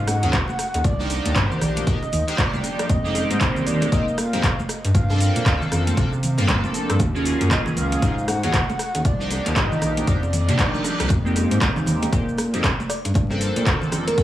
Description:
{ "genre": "deep house", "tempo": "117 BPM", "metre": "4/4", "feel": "swing 60% on 16ths", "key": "F dorian", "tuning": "A4 = 439 Hz", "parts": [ { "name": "breathy flute-like synth lead", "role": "melody", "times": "0.0-11.1 s", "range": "C5 to Gb5", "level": "-29 LUFS", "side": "equal", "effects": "ensemble chorus, tape echo" }, { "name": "smooth synth bass", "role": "bass", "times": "0.0-14.2 s", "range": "Bb1 to C3", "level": "-23 LUFS", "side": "equal", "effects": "sidechain pumping" }, { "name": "deep house drum kit", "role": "drums", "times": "0.1-14.2 s", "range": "handclaps, hi-hat, rim click, shaker", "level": "-26 LUFS", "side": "equal", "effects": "overdrive" }, { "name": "congas and bongos", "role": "percussion", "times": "0.1-14.2 s", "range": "none", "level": "-30 LUFS", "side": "right 2 dB", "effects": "sidechain pumping on perc" }, { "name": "chorused polysynth", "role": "stabs", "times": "0.2-14.2 s", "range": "F3 to A4", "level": "-26 LUFS", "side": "equal", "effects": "phaser, sidechain pumping, tape echo" }, { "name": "electronic kick drum", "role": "drums", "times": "0.3-14.2 s", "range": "none", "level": "-23 LUFS", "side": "equal", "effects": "overdrive" }, { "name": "reverse cymbal", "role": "sound effects", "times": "10.3-11.1 s", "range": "none", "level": "-32 LUFS", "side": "right 6 dB", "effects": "none" }, { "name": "bell-like FM electric piano", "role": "melody", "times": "12.9-14.2 s", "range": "Bb4 to D5", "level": "-25 LUFS", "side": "right 1 dB", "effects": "chorus, tremolo" } ], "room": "little or no reverb", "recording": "vinyl crackle, small room ambience", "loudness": "-18 LUFS", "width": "side -13 dB against mid", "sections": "0.0-14.2 A section", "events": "reverse cymbal 10.3-11.1", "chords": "0.0 Ebm11; 0.8 Cm11; 2.9 Fm11; 4.7 Gm11; 7.0 Ebm11; 9.0 Cm11; 11.1 Fm11; 12.9 Gm11", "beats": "0.33 | 0.84 1.36 1.87 2.38 | 2.90 3.41 3.92 4.43 | 4.95 5.46 5.97 6.49 | 7.00 7.51 8.02 8.54 | 9.05 9.56 10.07 10.59 | 11.10 11.61 12.13 12.64 | 13.15 13.66 14.18" }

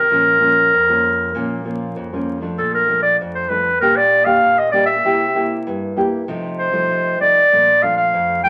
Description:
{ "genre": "samba", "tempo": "97 BPM", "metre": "4/4", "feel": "straight", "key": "Bb major", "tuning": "A4 = 440 Hz", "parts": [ { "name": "warm clarinet", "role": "melody", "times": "0.0-8.5 s", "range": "A4 to G5", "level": "-16 LUFS", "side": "equal", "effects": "none" }, { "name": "nylon-string guitar", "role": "accompaniment", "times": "0.0-8.5 s", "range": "F2 to G4", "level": "-24 LUFS", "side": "equal", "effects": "none" } ], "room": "wet club reverb, RT60 0.9 s", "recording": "vinyl crackle", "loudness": "-16 LUFS", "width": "mono", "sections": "0.0-2.6 A section; 2.6-8.5 B section", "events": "none", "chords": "0.1 Bbm; 2.6 Bbmaj7; 3.8 Gm/Bb; 5.0 C7; 6.3 F7/C; 7.5 Bbmaj7", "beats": "| 0.11 0.73 1.34 1.96 | 2.58 3.20 3.81 4.43 | 5.05 5.67 6.29 6.91 | 7.52 8.14" }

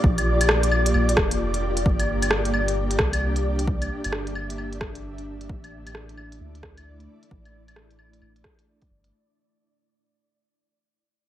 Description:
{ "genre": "future garage", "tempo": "132 BPM", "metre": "4/4", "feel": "swing 64% on 16ths", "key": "unclear", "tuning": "A4 = 440 Hz", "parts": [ { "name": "ethereal airy pad", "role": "sustained chords", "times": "0.0-9.1 s", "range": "A3 to E5", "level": "-28 LUFS", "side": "equal", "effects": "ensemble chorus, built-in reverb, tremolo, sidechain pumping" }, { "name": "soft dub sub bass", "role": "bass", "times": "0.0-9.1 s", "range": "G1 to D2", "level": "-26 LUFS", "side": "equal", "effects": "sidechain pumping" }, { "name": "electronic kick drum", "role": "drums", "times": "0.0-8.9 s", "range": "none", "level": "-25 LUFS", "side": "equal", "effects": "overdrive" }, { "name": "wind-like tuned noise texture", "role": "texture", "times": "0.0-9.1 s", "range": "D5", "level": "-35 LUFS", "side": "left 1 dB", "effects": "built-in reverb" }, { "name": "organic electronic drum kit", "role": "drums", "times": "0.2-9.1 s", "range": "claves, hi-hat, rim click", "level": "-25 LUFS", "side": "equal", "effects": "overdrive, low-pass filter on hats, low-pass filter on perc, low-pass filter on snare, low-pass filter on room" } ], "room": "light reverb", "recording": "vinyl crackle", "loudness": "-21 LUFS", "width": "side -12 dB against mid", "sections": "0.0-9.1 A section", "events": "fade-out 0.0-9.1", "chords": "0.0 Bb6; 1.9 Gm; 5.5 Asus4", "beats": "| 0.04 0.49 0.94 1.40 | 1.85 2.31 2.76 3.22 | 3.67 4.13 4.58 5.04 | 5.49 5.94 6.40 6.85 | 7.31 7.76 8.22 8.67" }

